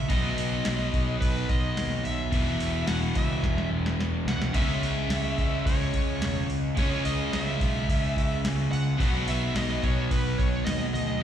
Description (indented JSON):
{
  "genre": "hard rock",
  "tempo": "108 BPM",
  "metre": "4/4",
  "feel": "straight",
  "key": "unclear",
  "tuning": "A4 = 439 Hz",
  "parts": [
    { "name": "smooth overdriven lead guitar", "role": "melody", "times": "0.0-11.2 s", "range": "B4 to Gb5", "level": "-33 LUFS", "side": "right 2 dB", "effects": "slapback echo" },
    { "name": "cranked stack guitar", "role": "riff", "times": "0.0-11.2 s", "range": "E2 to Db4", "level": "-32 LUFS", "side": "left 10 dB", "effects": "overdrive" },
    { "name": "distorted electric guitar", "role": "riff", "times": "0.0-11.2 s", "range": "E2 to Ab4", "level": "-36 LUFS", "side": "equal", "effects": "distortion, slapback echo" },
    { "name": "sludgy distorted guitar", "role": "riff", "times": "0.0-11.2 s", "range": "E2 to Db4", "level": "-32 LUFS", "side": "right 10 dB", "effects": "overdrive, slapback echo" },
    { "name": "picked electric bass", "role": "bass", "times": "0.0-11.2 s", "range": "E1 to D#2", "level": "-30 LUFS", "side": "equal", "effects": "none" },
    { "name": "soft vintage rhythm box", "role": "drums", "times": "0.1-11.1 s", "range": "crash cymbal, kick drum, snare drum", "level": "-30 LUFS", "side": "equal", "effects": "overdrive" }
  ],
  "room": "little or no reverb",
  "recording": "live gig heard through the venue's PA, recital hall reverb",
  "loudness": "-24 LUFS",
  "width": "side -10 dB against mid",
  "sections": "0.0-11.2 A section",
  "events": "drum fill 3.4-4.5",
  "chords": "0.1 B; 2.3 E; 4.5 Dbm; 9.0 B"
}